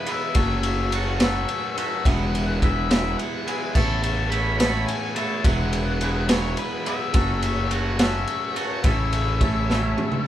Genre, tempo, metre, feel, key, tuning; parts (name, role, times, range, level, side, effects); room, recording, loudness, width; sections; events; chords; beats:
indie rock; 71 BPM (dotted quarters); 6/8; straight; A major; A4 = 439 Hz
octave-fuzz lead guitar; melody; 0.0-10.2 s; B4 to B5; -29 LUFS; left 5 dB; distortion
overdriven combo organ; sustained chords; 0.0-10.3 s; G#4 to C#6; -38 LUFS; equal
distorted electric guitar; riff; 0.0-10.3 s; A2 to F#4; -32 LUFS; left 4 dB; overdrive
twangy electric guitar; riff; 0.0-10.3 s; E3 to C#5; -30 LUFS; right 4 dB
raw garage drum kit; drums; 0.1-10.3 s; crash cymbal, kick drum, ride cymbal, snare drum, toms; -24 LUFS; equal
fuzz fingered electric bass; bass; 0.4-9.9 s; E1 to A1; -25 LUFS; equal; overdrive
moderate small room reverb, RT60 0.5 s; band playing live in one room; -20 LUFS; side -12 dB against mid
0.0-10.3 A section
drum fill 9.7-10.3
0.4 F#m; 2.1 Eadd9; 3.8 Aadd9; 5.4 Eadd9; 7.1 F#m; 8.8 A
| 0.36 1.21 | 2.06 2.90 | 3.75 4.60 | 5.45 6.30 | 7.15 8.00 | 8.85 9.70